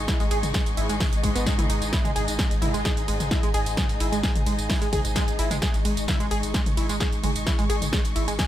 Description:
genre	driving peak-time techno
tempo	130 BPM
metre	4/4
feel	straight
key	unclear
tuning	A4 = 440 Hz
part	warm sub bass	bass	0.0-8.4 s	G#1	-30 LUFS	equal	overdrive, sidechain pumping, low-pass filter
part	analog drone	drone	0.0-8.5 s	G#2 to G#3	-34 LUFS	left 1 dB	chorus, sidechain pumping
part	warm studio string section	texture	0.0-8.5 s	D#4 to C#6	-33 LUFS	left 1 dB	sidechain pumping
part	tight sequenced synth	riff	0.1-8.5 s	G#3 to G#4	-30 LUFS	right 1 dB	chorus, tube saturation, sidechain pumping, tape echo
part	breakbeat sampler-style drum kit	drums	0.1-8.5 s	hi-hat, snare drum, tambourine	-42 LUFS	left 1 dB	none
part	electronic kick drum	drums	0.1-8.5 s	none	-25 LUFS	equal	none
part	techno drum kit	drums	0.1-8.5 s	hi-hat, ride cymbal, snare drum, tambourine, toms	-29 LUFS	equal	sidechain pumping on hats, sidechain pumping on cymbals, sidechain pumping on perc, sidechain pumping on toms
room	little or no reverb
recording	none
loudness	-22 LUFS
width	side -12 dB against mid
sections	0.0-8.5 A section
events	none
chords	0.0 G#5

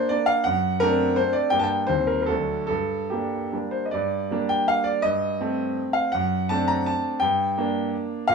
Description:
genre	classical, romantic triple-time dance for piano with dotted rhythms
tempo	141-181 BPM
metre	3/4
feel	rubato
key	G minor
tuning	A4 = 441 Hz
part	warm concert grand piano	solo	0.0-8.3 s	D2 to Bb5	-21 LUFS	equal	none
room	light reverb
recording	small room ambience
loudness	-21 LUFS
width	side -5 dB against mid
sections	0.0-3.9 A section; 3.9-8.3 B section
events	none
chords	0.5 D7/F#; 1.5 Gm; 1.9 Cm/Eb; 2.3 D; 2.7 Gm; 5.0 Am7b5/G; 6.1 D7/F#; 7.2 Gm

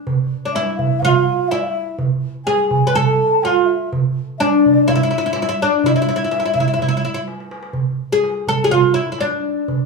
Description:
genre	Arabic maqam ensemble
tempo	125 BPM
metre	4/4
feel	straight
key	E maqam hijaz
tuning	A4 = 440 Hz
part	darbuka	percussion	0.1-9.9 s	none	-21 LUFS	right 5 dB	none
part	oud	melody	0.5-9.9 s	D4 to B4	-17 LUFS	equal	none
part	breathy mellow low ney	second line	0.5-7.3 s	D5 to A5	-21 LUFS	left 4 dB	none
room	wet studio reverb, RT60 0.9 s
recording	band playing live in one room, small room ambience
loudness	-15 LUFS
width	side -3 dB against mid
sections	0.0-7.8 A section; 7.8-9.9 B section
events	drum fill 7.3-7.8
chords	none

